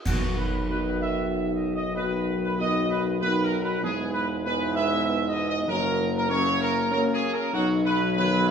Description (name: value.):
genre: classical, ceremonial fanfare.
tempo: 97 BPM.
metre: 3/4.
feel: straight.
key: B major.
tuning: A4 = 440 Hz.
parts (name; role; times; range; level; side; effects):
mellow trumpet section; melody; 0.1-8.5 s; F#4 to E5; -27 LUFS; right 2 dB; none.
dark French horn section; sustained chords; 0.1-8.5 s; D#3 to F#4; -29 LUFS; left 3 dB; none.
warm trombone section; sustained chords; 0.1-8.5 s; G#2 to G#3; -32 LUFS; right 3 dB; none.
clear tuba; bass; 0.1-8.5 s; E1 to B1; -28 LUFS; equal; none.
clash cymbals and concert bass drum; percussion; 0.1-1.3 s; none; -31 LUFS; right 1 dB; none.
room: wet stone room reverb, RT60 1.5 s.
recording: heard from further back in the room.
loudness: -23 LUFS.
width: side -7 dB against mid.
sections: 0.1-8.5 A section.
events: band accent 0.1-0.7.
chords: 0.1 B; 3.8 E; 5.7 F#; 7.5 B.